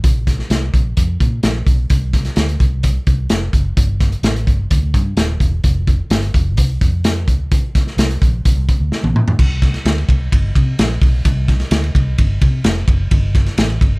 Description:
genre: uptempo 1960s-style soul.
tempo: 128 BPM.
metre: 4/4.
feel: straight.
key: unclear.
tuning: A4 = 439 Hz.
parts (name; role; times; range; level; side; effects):
vintage muted fingered electric bass; bass; 0.0-14.0 s; Eb1 to C3; -18 LUFS; equal; none.
crunchy breakbeat drum kit; drums; 0.0-13.9 s; crash cymbal, hi-hat, kick drum, ride cymbal, snare drum, toms; -14 LUFS; equal; none.
room: little or no reverb.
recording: none.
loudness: -13 LUFS.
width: side -28 dB against mid.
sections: 0.0-9.4 A section; 9.4-14.0 B section.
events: drum fill 8.9-9.4.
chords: none.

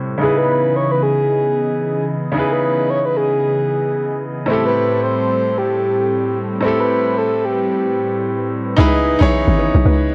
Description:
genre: amapiano.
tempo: 112 BPM.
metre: 4/4.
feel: swing 58% on 16ths.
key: unclear.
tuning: A4 = 439 Hz.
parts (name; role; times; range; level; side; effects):
bright grand piano; accompaniment; 0.0-10.1 s; A2 to C#5; -22 LUFS; equal; low-pass filter.
warm analog pad; sustained chords; 0.0-10.1 s; A2 to D#5; -27 LUFS; equal; chorus, low-pass filter.
breathy flute-like synth lead; melody; 0.2-8.5 s; G4 to C#5; -20 LUFS; equal; chorus, low-pass filter.
soft round pluck; stabs; 8.8-10.1 s; D#4 to B4; -25 LUFS; equal; chorus, tape echo.
hollow log drum bass; bass; 8.8-10.1 s; G#1 to C#2; -17 LUFS; equal; none.
room: moderate spring reverb, RT60 1.4 s, digital ambience.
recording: worn, warbling old tape, cassette tape, warbly pitch drift.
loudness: -17 LUFS.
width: mono.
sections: 0.0-8.8 A section; 8.8-10.1 B section.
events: filter sweep 0.0-8.8; drop 8.8-10.1.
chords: 0.2 C#m9; 4.5 Am9; 8.8 C#m9.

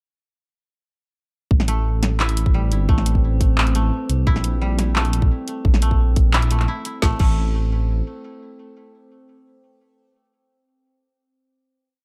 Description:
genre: half-time drum and bass.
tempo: 174 BPM.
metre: 4/4.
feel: half-time.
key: A phrygian.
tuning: A4 = 440 Hz.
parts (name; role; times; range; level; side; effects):
dark detuned saw bass; bass; 1.5-8.0 s; G1 to C2; -21 LUFS; equal; tube saturation.
electronic kick drum; drums; 1.5-7.3 s; none; -20 LUFS; equal; none.
metallic inharmonic drone; texture; 2.4-7.0 s; C4; -35 LUFS; equal; chorus, built-in reverb.
drum and bass drum kit; drums; 1.6-7.3 s; crash cymbal, handclaps, hi-hat, snare drum; -26 LUFS; equal; none.
koto; arpeggios; 1.7-10.1 s; G3 to E4; -32 LUFS; equal; vintage 12-bit sampler grit, delay.
room: little or no reverb.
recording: dark, warm production.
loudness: -19 LUFS.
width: mono.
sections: 1.5-7.0 drop; 7.0-9.8 final note.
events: drop 1.5-7.0.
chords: 1.5 Am; 4.3 C7/Bb; 7.0 N.C..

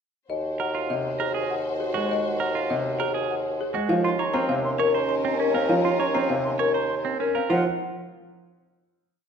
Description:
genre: classical, minimalist pattern music.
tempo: 200 BPM.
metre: 6/4.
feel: straight.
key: Eb dorian.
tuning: A4 = 441 Hz.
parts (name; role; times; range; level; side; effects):
folk marimba with medium hard mallets; melody; 0.3-7.6 s; Ab4 to C6; -28 LUFS; left 6 dB; none.
rich studio string section; sustained chords; 0.3-7.3 s; Db4 to C5; -32 LUFS; right 1 dB; none.
warm bassoon; bass; 0.3-7.6 s; Eb2; -28 LUFS; equal; none.
clean electric guitar; arpeggios; 0.6-7.6 s; C4 to Db5; -30 LUFS; right 8 dB; none.
bright baby grand piano; accompaniment; 0.9-7.6 s; C3 to C4; -28 LUFS; right 2 dB; none.
concert flute; arpeggios; 4.0-7.6 s; Gb5 to C6; -33 LUFS; equal; none.
room: wet recital hall reverb, RT60 1.5 s.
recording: none.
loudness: -22 LUFS.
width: side -7 dB against mid.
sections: 0.3-7.5 A section; 7.5-9.3 final chord.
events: none.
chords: 0.3 Ebm6; 3.9 Bbm/Eb; 7.5 Ebmadd9.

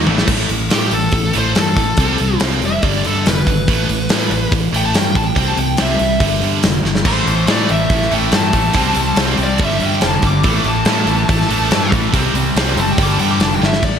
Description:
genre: hard rock.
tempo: 142 BPM.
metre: 4/4.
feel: straight.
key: A minor.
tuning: A4 = 440 Hz.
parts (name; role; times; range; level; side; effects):
heavy high-gain guitar; riff; 0.0-13.8 s; G2 to C4; -21 LUFS; right 11 dB; distortion.
sludgy distorted guitar; riff; 0.0-14.0 s; G2 to C4; -22 LUFS; left 9 dB; overdrive.
sludgy distorted guitar; riff; 0.0-0.3, 7.1-13.8 s; G2 to C4; -22 LUFS; equal; overdrive.
fingered electric bass; bass; 0.0-14.0 s; F1 to A2; -20 LUFS; equal; none.
big rock drum kit; drums; 0.1-13.9 s; crash cymbal, hi-hat, kick drum, snare drum, splash cymbal, toms; -18 LUFS; equal; gated reverb.
high-gain lead guitar; melody; 0.7-14.0 s; G4 to D6; -20 LUFS; equal; distortion.
room: moderate lush hall reverb, RT60 1.7 s, small room reverb.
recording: bright 1980s-style digital production.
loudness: -13 LUFS.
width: side -8 dB against mid.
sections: 0.3-13.8 A section.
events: drum fill 0.1, 6.9, 13.6; lead electric guitar solo 0.3-13.8.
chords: 0.3 A5; 2.0 C5; 2.8 G; 3.7 A5; 5.4 C; 6.2 G5; 7.1 Am; 8.8 C5; 9.6 G5; 10.4 A5; 12.1 C5; 13.0 G5.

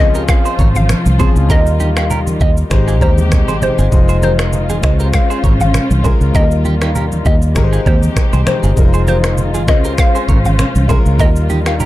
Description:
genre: afrobeats.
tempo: 99 BPM.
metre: 4/4.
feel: swing 55% on 16ths.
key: unclear.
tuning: A4 = 438 Hz.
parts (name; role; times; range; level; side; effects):
hollow square pluck; melody; 0.0-11.8 s; C5 to F5; -21 LUFS; left 1 dB; chorus, tape echo.
clear concert grand piano; accompaniment; 0.0-11.9 s; F3 to C5; -21 LUFS; left 4 dB; none.
muted studio string section; sustained chords; 0.0-11.9 s; C3 to C5; -23 LUFS; left 2 dB; none.
fingered electric bass; bass; 0.0-11.9 s; F1 to Eb2; -14 LUFS; equal; none.
afro-pop drum kit; drums; 0.1-11.9 s; finger snaps, kick drum, rim click, shaker; -14 LUFS; equal; none.
clean electric guitar; riff; 0.2-11.9 s; Eb4 to Db5; -25 LUFS; right 7 dB; wide subtle chorus, tape echo.
congas; percussion; 0.6-11.9 s; none; -22 LUFS; right 2 dB; none.
room: little or no reverb.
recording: dark, warm production.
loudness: -10 LUFS.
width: side -16 dB against mid.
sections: 0.0-11.9 A section.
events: none.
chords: 0.0 Dbmaj7; 1.5 Ebadd9; 2.7 Abmaj7; 3.9 Fm7; 4.8 Dbmaj7; 6.3 Ebadd9; 7.6 Abmaj7; 8.8 Fm7; 9.7 Dbmaj7; 11.2 Ebadd9.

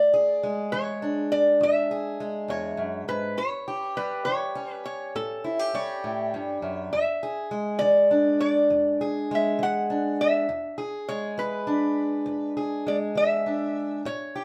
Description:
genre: acoustic country blues, solo or duo.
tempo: 68 BPM (dotted quarters).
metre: 12/8.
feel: straight.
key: E mixolydian.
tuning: A4 = 440 Hz.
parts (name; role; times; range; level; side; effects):
lap resonator guitar; melody; 0.0-14.4 s; A4 to F#5; -27 LUFS; equal; none.
fingerpicked acoustic archtop guitar; accompaniment; 0.0-14.4 s; E2 to G#4; -30 LUFS; equal; none.
room: light reverb.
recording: band playing live in one room.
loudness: -26 LUFS.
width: mono.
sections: 0.0-14.4 A section.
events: none.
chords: 0.0 E7; 3.4 A7; 6.9 E7.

